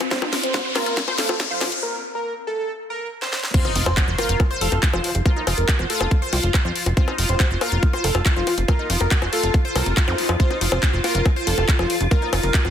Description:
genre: psychedelic trance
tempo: 140 BPM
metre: 4/4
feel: straight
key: F major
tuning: A4 = 440 Hz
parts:
  - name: swarming drone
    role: sustained chords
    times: 0.0-12.7 s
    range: C4 to F4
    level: -31 LUFS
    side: equal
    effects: built-in reverb, sidechain pumping
  - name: garage drum kit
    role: drums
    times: 0.0-12.7 s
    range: bongos, crash cymbal, handclaps, hi-hat, snare drum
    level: -24 LUFS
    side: left 3 dB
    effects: small room reverb
  - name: riser, impact and zap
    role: sound effects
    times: 0.0-5.3, 10.1-10.2 s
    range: none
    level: -28 LUFS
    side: left 1 dB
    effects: none
  - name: wide unison lead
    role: melody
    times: 0.1-12.6 s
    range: F4 to C5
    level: -27 LUFS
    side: equal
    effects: phaser, sidechain pumping, dub echo
  - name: formant-sweep wobble bass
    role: second line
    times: 0.1-12.3 s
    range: F3 to F4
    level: -39 LUFS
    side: right 4 dB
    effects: none
  - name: wide unison pluck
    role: riff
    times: 0.1-12.7 s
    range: Eb4 to F5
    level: -28 LUFS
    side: equal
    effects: auto-pan, sidechain pumping, dub echo
  - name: electronic kick drum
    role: drums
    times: 0.1-12.6 s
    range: none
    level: -19 LUFS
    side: equal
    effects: high-pass filter on kick, small room reverb
  - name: plucky analog bass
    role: bass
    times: 3.8-12.7 s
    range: F1 to F2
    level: -22 LUFS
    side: equal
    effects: none
room: light reverb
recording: dense, heavily limited modern master, high-pass filter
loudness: -18 LUFS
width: side -9 dB against mid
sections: 0.0-3.5 A section; 3.5-12.7 B section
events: build-up 0.0-3.5; drum fill 0.0-1.8, 3.2-3.5; riser 0.0-1.8; filter sweep on analog synth lead 0.0-3.5; filter sweep on synth drone 0.0-3.5; break 1.8-3.5; drop 3.5-12.7; impact 3.5-5.3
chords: 0.0 N.C.; 3.5 F5

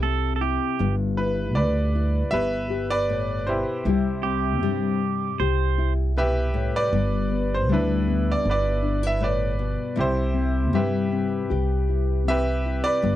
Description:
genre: acoustic folk-pop ballad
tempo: 78 BPM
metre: 4/4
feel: straight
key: unclear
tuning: A4 = 442 Hz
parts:
  - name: pedal steel guitar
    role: second line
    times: 0.0-5.9 s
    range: G4 to C5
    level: -27 LUFS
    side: right 13 dB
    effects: none
  - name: nylon-string guitar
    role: accompaniment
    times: 0.0-13.2 s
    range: G2 to B4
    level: -27 LUFS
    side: left 7 dB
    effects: none
  - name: upright bass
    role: bass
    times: 0.0-13.2 s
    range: G1 to G2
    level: -25 LUFS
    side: right 1 dB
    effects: none
  - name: bright concert grand piano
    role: melody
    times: 1.2-13.2 s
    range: D4 to E5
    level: -26 LUFS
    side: right 1 dB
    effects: none
room: little or no reverb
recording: dry, close 1970s-style studio recording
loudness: -21 LUFS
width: side -13 dB against mid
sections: 0.0-13.2 A section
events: none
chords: 0.0 C; 0.8 G6; 3.9 Cmaj7; 6.9 G6; 10.0 Cmaj7

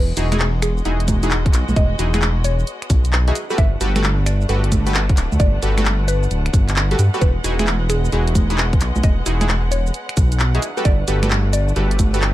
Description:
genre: UK garage, two-step garage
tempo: 132 BPM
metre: 4/4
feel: swing 66% on 16ths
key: E major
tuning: A4 = 440 Hz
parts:
  - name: mallet-like synth pluck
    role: melody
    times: 0.0-12.3 s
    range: G#4 to E5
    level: -27 LUFS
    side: equal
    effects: chorus, phaser, ping-pong delay
  - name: rich studio violin section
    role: sustained chords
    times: 0.0-12.3 s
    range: G#3 to F#5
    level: -31 LUFS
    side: equal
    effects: sidechain pumping
  - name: dark detuned saw bass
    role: bass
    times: 0.0-12.3 s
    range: D1 to G2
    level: -18 LUFS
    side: equal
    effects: none
  - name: punchy chord stab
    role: stabs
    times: 0.2-12.3 s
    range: D#4 to B4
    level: -24 LUFS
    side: equal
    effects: chorus, ping-pong delay
  - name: garage drum kit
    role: drums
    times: 0.2-12.3 s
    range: congas, finger snaps, handclaps, hi-hat, shaker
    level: -23 LUFS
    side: right 1 dB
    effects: none
  - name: electronic kick drum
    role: drums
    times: 1.1-12.1 s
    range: none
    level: -17 LUFS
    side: equal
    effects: none
room: little or no reverb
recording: dark, warm production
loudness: -15 LUFS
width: side -15 dB against mid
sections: 0.0-12.3 A section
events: none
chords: 0.0 Emaj9; 3.4 Gmaj9; 7.2 Emaj9; 10.6 Gmaj9

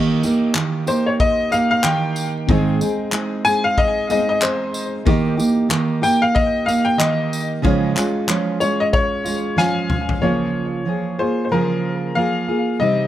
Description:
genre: acoustic pop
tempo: 93 BPM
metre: 4/4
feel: swing 60% on 16ths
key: unclear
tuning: A4 = 444 Hz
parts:
  - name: felt-muted upright piano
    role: accompaniment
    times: 0.0-13.1 s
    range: G3 to Eb5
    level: -29 LUFS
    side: left 6 dB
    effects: none
  - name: fingerpicked steel-string acoustic guitar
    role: accompaniment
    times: 0.0-13.1 s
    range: Ab2 to Ab4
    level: -19 LUFS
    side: right 3 dB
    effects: none
  - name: loose indie drum kit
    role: drums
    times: 0.2-10.2 s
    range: handclaps, kick drum, snare drum, tambourine, toms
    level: -23 LUFS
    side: left 1 dB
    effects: none
  - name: bright upright piano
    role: melody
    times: 0.9-13.1 s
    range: Bb4 to Ab5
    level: -20 LUFS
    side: left 2 dB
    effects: tape echo
room: light reverb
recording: none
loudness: -16 LUFS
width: side -12 dB against mid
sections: 0.0-10.2 A section; 10.2-13.1 B section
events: drum fill 9.6-10.2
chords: 0.0 Eb; 2.5 Ab; 5.1 Eb; 7.6 Db; 10.2 Db6

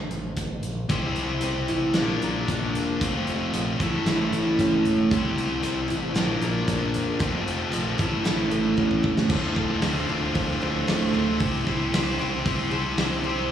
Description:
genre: quiet-loud alternative rock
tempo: 114 BPM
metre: 4/4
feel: straight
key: D minor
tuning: A4 = 440 Hz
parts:
  - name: growling fingered electric bass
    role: bass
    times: 0.0-13.5 s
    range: D1 to C2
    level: -30 LUFS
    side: right 1 dB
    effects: overdrive
  - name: big rock drum kit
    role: drums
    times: 0.1-13.1 s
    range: crash cymbal, hi-hat, kick drum, snare drum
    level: -28 LUFS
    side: right 2 dB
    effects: none
  - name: picked old ladder-braced acoustic guitar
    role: arpeggios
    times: 0.9-13.5 s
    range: D2 to C5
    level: -29 LUFS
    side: right 4 dB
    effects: slapback echo
  - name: distorted electric guitar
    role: riff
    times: 0.9-13.5 s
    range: D2 to C5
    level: -25 LUFS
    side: left 4 dB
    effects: overdrive, slapback echo
room: moderate club reverb, RT60 0.5 s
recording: live gig heard through the venue's PA, club reverb, studio reverb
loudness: -22 LUFS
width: side -9 dB against mid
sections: 0.0-9.3 A section; 9.3-13.5 B section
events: half time 0.0-9.3; drum fill 8.8-9.3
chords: 0.0 N.C.; 0.9 C; 2.0 Bb; 3.0 F; 3.8 A; 5.1 C; 6.2 Bb; 7.2 F; 8.0 A; 9.3 Dm7; 11.4 C

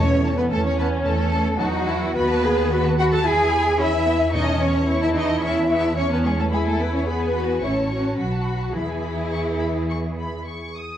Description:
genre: quick classical-period movement for symphony orchestra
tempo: 109 BPM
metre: 4/4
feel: rubato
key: E major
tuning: A4 = 440 Hz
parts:
  - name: rich studio violin section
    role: melody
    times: 0.0-11.0 s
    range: G#5 to D#6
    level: -32 LUFS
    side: left 2 dB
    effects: none
  - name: warm studio violin section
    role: second line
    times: 0.0-10.5 s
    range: E4 to A5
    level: -25 LUFS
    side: left 1 dB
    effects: none
  - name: rich studio viola section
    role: accompaniment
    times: 0.0-10.8 s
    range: A3 to G#4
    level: -26 LUFS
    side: equal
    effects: none
  - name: rich studio cello section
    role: bass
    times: 0.0-10.5 s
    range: E3 to A4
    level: -25 LUFS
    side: equal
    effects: none
  - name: warm studio double bass section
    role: bass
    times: 0.0-10.8 s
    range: A1 to E2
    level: -25 LUFS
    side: right 2 dB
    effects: none
  - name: timpani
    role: percussion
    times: 0.0-0.7, 4.3-5.1 s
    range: E2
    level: -28 LUFS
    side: equal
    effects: none
room: wet recital hall reverb, RT60 1.3 s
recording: worn, warbling old tape, cassette tape, warbly pitch drift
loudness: -19 LUFS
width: side -10 dB against mid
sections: 0.0-11.0 A section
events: none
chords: 0.0 F#m7/E; 2.2 B7/D#; 3.3 E; 4.3 A/E; 6.5 E; 7.6 A; 8.2 B5; 8.8 E

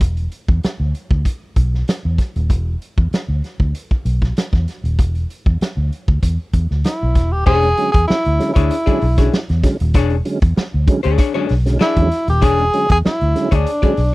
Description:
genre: funk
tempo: 97 BPM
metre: 4/4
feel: straight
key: E mixolydian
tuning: A4 = 440 Hz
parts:
  - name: vintage muted fingered electric bass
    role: bass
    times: 0.0-14.1 s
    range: D#1 to E2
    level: -17 LUFS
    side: equal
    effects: none
  - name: raw garage drum kit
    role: drums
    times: 0.0-14.1 s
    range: crash cymbal, hi-hat, kick drum, snare drum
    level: -16 LUFS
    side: equal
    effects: none
  - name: breathy tenor saxophone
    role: melody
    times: 6.8-14.1 s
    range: D4 to G#4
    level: -18 LUFS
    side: equal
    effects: none
  - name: archtop guitar, miked and amplified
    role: accompaniment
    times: 7.5-14.0 s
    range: D4 to D5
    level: -20 LUFS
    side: left 8 dB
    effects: none
  - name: tonewheel organ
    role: stabs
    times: 7.6-13.9 s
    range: D3 to C#4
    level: -20 LUFS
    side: right 2 dB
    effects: chorus vibrato, slow rotary speaker
room: little or no reverb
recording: dry, close 1970s-style studio recording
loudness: -14 LUFS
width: side -20 dB against mid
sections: 0.0-7.5 A section; 7.5-14.1 B section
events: none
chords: 0.0 E5; 7.5 E13

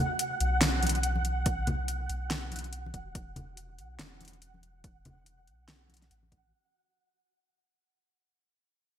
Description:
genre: deep dubstep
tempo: 142 BPM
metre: 4/4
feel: swing 59% on 16ths, half-time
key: unclear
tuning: A4 = 440 Hz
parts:
  - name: flickering grainy texture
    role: texture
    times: 0.0-6.5 s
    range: F#5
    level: -35 LUFS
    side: right 2 dB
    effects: built-in reverb, wide subtle chorus
  - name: deep house drum kit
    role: drums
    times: 0.2-6.4 s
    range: hi-hat, snare drum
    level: -30 LUFS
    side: left 1 dB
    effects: overdrive, gated reverb
  - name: soft dub sub bass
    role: bass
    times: 0.4-6.5 s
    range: E1 to B1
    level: -33 LUFS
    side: equal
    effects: none
  - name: congas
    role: percussion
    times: 0.8-6.3 s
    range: none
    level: -33 LUFS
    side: left 1 dB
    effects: none
  - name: electronic kick drum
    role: drums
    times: 1.5-6.4 s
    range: none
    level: -36 LUFS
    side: equal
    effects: overdrive
room: moderate lush hall reverb, RT60 2.0 s, digital ambience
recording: bright 1980s-style digital production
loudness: -28 LUFS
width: side -10 dB against mid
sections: 0.0-6.5 A section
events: fade-out 0.0-6.5; filter sweep on sub bass 0.0-6.5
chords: 0.0 E5

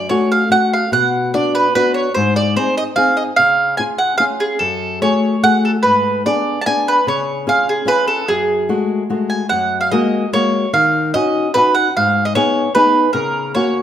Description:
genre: italian folk, Italian serenade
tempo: 147 BPM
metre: 3/4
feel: straight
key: F# harmonic minor, F# major from 9.5 s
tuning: A4 = 440 Hz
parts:
  - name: mandolin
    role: melody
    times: 0.0-13.8 s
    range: G#4 to A5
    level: -15 LUFS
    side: right 2 dB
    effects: none
  - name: flamenco guitar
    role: accompaniment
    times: 0.0-13.8 s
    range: F#2 to G#4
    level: -18 LUFS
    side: left 2 dB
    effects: none
room: moderate recital hall reverb, RT60 1.5 s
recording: none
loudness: -13 LUFS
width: side -10 dB against mid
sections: 0.0-9.5 A section; 9.5-13.8 B section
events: none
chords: 0.0 F#m; 0.9 Bm; 2.2 G#; 3.4 C#; 4.6 F#madd9; 5.8 G#dim; 7.1 C#; 8.3 F#madd9; 9.5 F#add9; 10.7 D#m7; 11.9 G#m; 13.1 F#/C#

